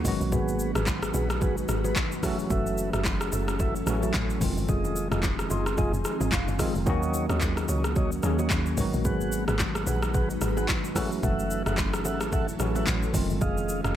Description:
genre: amapiano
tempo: 110 BPM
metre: 4/4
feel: swing 58% on 16ths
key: unclear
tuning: A4 = 443 Hz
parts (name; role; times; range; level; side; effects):
- tine electric piano; accompaniment; 0.0-14.0 s; Eb3 to C6; -31 LUFS; equal; medium stereo tremolo
- ethereal airy pad; sustained chords; 0.0-14.0 s; Eb3 to Cb5; -35 LUFS; right 1 dB; ensemble chorus, built-in reverb, sidechain pumping
- deep log drum bass; bass; 0.0-14.0 s; F1 to Eb2; -30 LUFS; equal; none
- deep house drum kit; drums; 0.0-14.0 s; handclaps, hi-hat, kick drum, rim click, shaker; -29 LUFS; equal; overdrive
- bongos and congas; percussion; 0.0-13.6 s; none; -37 LUFS; left 1 dB; none
- mellow tonewheel organ; stabs; 0.3-14.0 s; F4 to Gb5; -33 LUFS; right 2 dB; slow rotary speaker, digital delay
room: light reverb, digital ambience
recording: none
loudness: -24 LUFS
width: side -11 dB against mid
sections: 0.0-14.0 A section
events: tine electric piano fill 5.2-6.9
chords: 0.1 Abm7; 2.2 Gbm7; 4.4 Fm7; 6.9 Ebm7; 8.8 Abm7; 11.0 Gbm7; 13.1 Fm7

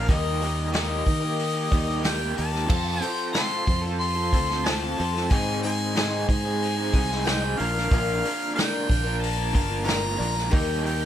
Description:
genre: folk rock and heartland rock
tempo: 92 BPM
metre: 4/4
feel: straight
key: unclear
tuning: A4 = 440 Hz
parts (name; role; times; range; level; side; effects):
- warm harmonica; melody; 0.0-11.1 s; Eb5 to C6; -29 LUFS; left 1 dB; none
- picked twelve-string acoustic guitar; accompaniment; 0.0-11.1 s; Ab2 to Bb4; -32 LUFS; left 7 dB; none
- bright chamber string section; sustained chords; 0.0-11.1 s; D4 to C5; -38 LUFS; right 1 dB; none
- electric guitar through a small old amp; riff; 0.0-11.1 s; Ab2 to Bb4; -31 LUFS; right 3 dB; tremolo
- fingered electric bass; bass; 0.0-11.1 s; G1 to Eb3; -28 LUFS; equal; none
- vintage drum kit; drums; 0.1-11.0 s; crash cymbal, hi-hat, kick drum, snare drum; -26 LUFS; equal; none
room: little or no reverb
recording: none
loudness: -22 LUFS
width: side -10 dB against mid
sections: 0.0-11.1 A section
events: none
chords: 0.1 Eb; 2.7 F; 5.3 Ab; 7.6 Bb; 10.5 Eb

